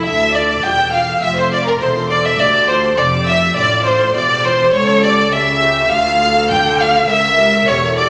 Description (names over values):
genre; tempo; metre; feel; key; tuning
classical, baroque-style concerto movement with solo episodes; 102 BPM; 4/4; straight; D minor; A4 = 440 Hz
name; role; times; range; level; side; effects
rich chamber violin section; melody; 0.0-8.1 s; Bb5 to G6; -26 LUFS; equal; none
rich violin; melody; 0.0-8.1 s; Bb4 to G5; -17 LUFS; equal; none
rich chamber violin section; second line; 0.0-8.1 s; Bb4 to G5; -20 LUFS; equal; none
harpsichord; accompaniment; 0.0-8.1 s; C#2 to F5; -29 LUFS; equal; none
rich chamber viola section; accompaniment; 0.0-8.1 s; F4 to A#4; -27 LUFS; equal; none
rich studio double bass section; bass; 0.0-8.1 s; E1 to D2; -27 LUFS; equal; none
warm chamber cello section; bass; 0.0-8.1 s; C#2 to D3; -26 LUFS; equal; none
room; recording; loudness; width
wet recital hall reverb, RT60 1.5 s; none; -14 LUFS; mono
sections
0.0-8.1 A section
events
none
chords
0.1 Dm; 1.2 Bbmaj9#11; 2.4 Dm; 4.7 A7/C#; 5.9 Dm; 7.1 C#dim7